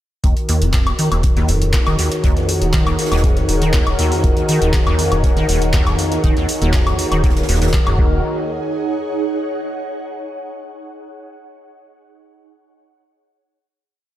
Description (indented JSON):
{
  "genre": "acid house",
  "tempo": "120 BPM",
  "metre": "4/4",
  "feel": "straight",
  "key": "Eb minor",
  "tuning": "A4 = 442 Hz",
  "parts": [
    { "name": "warm analog pad", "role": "sustained chords", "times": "0.2-8.2 s", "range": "Eb3 to Bb4", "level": "-22 LUFS", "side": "left 1 dB", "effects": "chorus, sidechain pumping" },
    { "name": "liquid acid bass", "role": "riff", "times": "0.2-8.2 s", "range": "Eb2 to Eb3", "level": "-20 LUFS", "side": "equal", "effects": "tube saturation, ensemble chorus, analog delay" },
    { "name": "round analog bass", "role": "bass", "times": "0.2-8.2 s", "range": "Eb1", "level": "-21 LUFS", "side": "equal", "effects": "tube saturation, sidechain pumping" },
    { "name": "booming analog drum machine", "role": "drums", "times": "0.2-8.0 s", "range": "handclaps, hi-hat, woodblock", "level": "-24 LUFS", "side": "left 1 dB", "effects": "overdrive" },
    { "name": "electronic kick drum", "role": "drums", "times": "0.2-8.1 s", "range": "none", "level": "-17 LUFS", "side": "equal", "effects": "none" },
    { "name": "open jazz drum kit", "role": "drums", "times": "0.2-7.9 s", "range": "hi-hat, snare drum", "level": "-33 LUFS", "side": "right 1 dB", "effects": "none" },
    { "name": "ethereal airy pad", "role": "texture", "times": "1.1-10.2 s", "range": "Eb4 to Gb5", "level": "-24 LUFS", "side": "right 2 dB", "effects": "ensemble chorus, built-in reverb, phaser, sidechain pumping" }
  ],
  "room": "light reverb",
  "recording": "none",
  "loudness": "-14 LUFS",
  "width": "side -13 dB against mid",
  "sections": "0.2-8.2 groove; 8.2-10.2 final chord",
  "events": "none",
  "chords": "0.2 Ebm",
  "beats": "| 0.24 0.74 1.24 1.74 | 2.24 2.74 3.24 3.74 | 4.24 4.74 5.24 5.74 | 6.24 6.74 7.24 7.74 | 8.24 8.74 9.24 9.74"
}